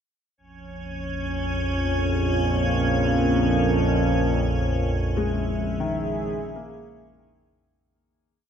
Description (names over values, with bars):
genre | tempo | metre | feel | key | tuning
dark ambient drone | 65 BPM | 4/4 | straight | Bb minor | A4 = 439 Hz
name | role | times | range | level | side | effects
dark analog pad | sustained chords | 0.4-7.8 s | Db4 to F5 | -30 LUFS | right 1 dB | chorus
analog drone | drone | 0.8-7.9 s | Bb1 to F2 | -23 LUFS | right 1 dB | chorus, phaser
icy glass pad | texture | 0.7-7.8 s | Db4 to Db5 | -29 LUFS | left 2 dB | chorus, built-in reverb
warm grand piano | arpeggios | 5.2-8.5 s | Eb3 to Bb3 | -30 LUFS | left 4 dB | none
room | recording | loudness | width
wet cathedral reverb, RT60 5.7 s | in a vast, echoing space | -21 LUFS | side -8 dB against mid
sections
0.4-7.8 A section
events
fade-in on analog synth pad 0.4-7.8; fade-out on ambient pad 0.4-7.8; fade-out 4.1-7.8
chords
0.4 Bbm; 4.1 Dbm